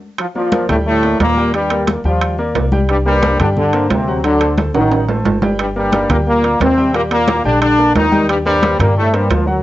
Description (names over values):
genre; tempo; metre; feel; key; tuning
latin, salsa; 178 BPM; 4/4; straight; G minor; A4 = 444 Hz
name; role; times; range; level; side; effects
brilliant trombone section; melody; 0.2-9.6 s; F#2 to F4; -15 LUFS; equal; cassette tape
congas; percussion; 0.2-9.6 s; none; -21 LUFS; left 1 dB; none
timbales; percussion; 0.2-9.5 s; none; -21 LUFS; right 6 dB; none
clear baby grand piano; accompaniment; 0.4-9.6 s; F#3 to G5; -21 LUFS; left 1 dB; cassette tape
upright bass; bass; 0.7-9.6 s; G1 to G2; -19 LUFS; equal; none
room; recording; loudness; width
moderate small room reverb, RT60 0.6 s; home recording on cassette, nothing above 7.8 kHz; -12 LUFS; side -15 dB against mid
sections
0.2-9.6 A section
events
drum fill 0.0, 4.7-5.6; band accent 0.0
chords
0.2 Gm9; 1.5 Ebmaj9; 2.9 Csus2; 4.2 D7b9; 5.6 Gm; 6.9 Ebmaj7; 8.3 Cm11/Eb